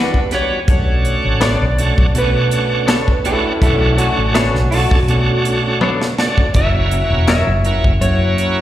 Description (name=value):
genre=straight-eighth soul blues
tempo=82 BPM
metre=4/4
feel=swing 54% on 16ths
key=B minor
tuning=A4 = 440 Hz
part: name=electric slide guitar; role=melody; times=0.0-8.6 s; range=B4 to E5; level=-22 LUFS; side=right 1 dB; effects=slapback echo
part: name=bright tonewheel organ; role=accompaniment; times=0.0-8.6 s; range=G3 to A4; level=-20 LUFS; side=right 3 dB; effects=slow rotary speaker, overdrive, slapback echo
part: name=direct-recorded clean electric guitar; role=stabs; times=0.0-7.5 s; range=E3 to C#5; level=-19 LUFS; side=left 4 dB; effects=slapback echo
part: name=woody fretless electric bass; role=bass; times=0.0-8.6 s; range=E1 to E3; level=-17 LUFS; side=equal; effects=none
part: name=tight funk drum kit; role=drums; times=0.1-8.6 s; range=hi-hat, kick drum, snare drum, toms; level=-17 LUFS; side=equal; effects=none
part: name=electric guitar through a small old amp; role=second line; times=3.3-5.4 s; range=C#4 to A4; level=-20 LUFS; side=equal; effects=wide subtle chorus, slapback echo
room=light reverb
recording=live gig heard through the venue's PA, recital hall reverb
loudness=-13 LUFS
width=side -13 dB against mid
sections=0.0-8.6 A section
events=drum fill 5.8-6.6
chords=0.0 Em9; 0.7 Bm9; 6.6 F#7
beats=| 0.68 1.42 2.15 2.89 | 3.62 4.35 5.09 5.82 | 6.55 7.29 8.02